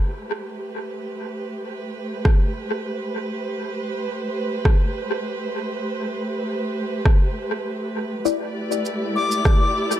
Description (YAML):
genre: ambient dub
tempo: 100 BPM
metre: 4/4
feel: swing 54% on 16ths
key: A minor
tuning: A4 = 440 Hz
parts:
  - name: dark chamber string section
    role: sustained chords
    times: 0.0-10.0 s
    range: A3 to D5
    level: -26 LUFS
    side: right 1 dB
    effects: none
  - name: electronic kick drum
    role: drums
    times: 2.3-9.6 s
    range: none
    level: -17 LUFS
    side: equal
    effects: none
  - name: electronic rim click and shaker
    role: drums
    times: 2.3-10.0 s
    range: none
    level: -28 LUFS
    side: right 1 dB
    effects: dub echo
  - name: filtered dub chord stab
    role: stabs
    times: 8.3-8.5 s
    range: E4 to D5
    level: -26 LUFS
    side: left 9 dB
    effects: phaser, analog chorus, dub echo
  - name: bright reedy concert flute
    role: melody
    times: 9.2-10.0 s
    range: D6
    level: -22 LUFS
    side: left 4 dB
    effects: dub echo
room: light reverb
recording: echo-heavy mix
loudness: -22 LUFS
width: side -12 dB against mid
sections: 0.0-10.0 A section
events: fade-in on string section 0.0-10.0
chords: 0.0 Am9; 8.3 Em7/A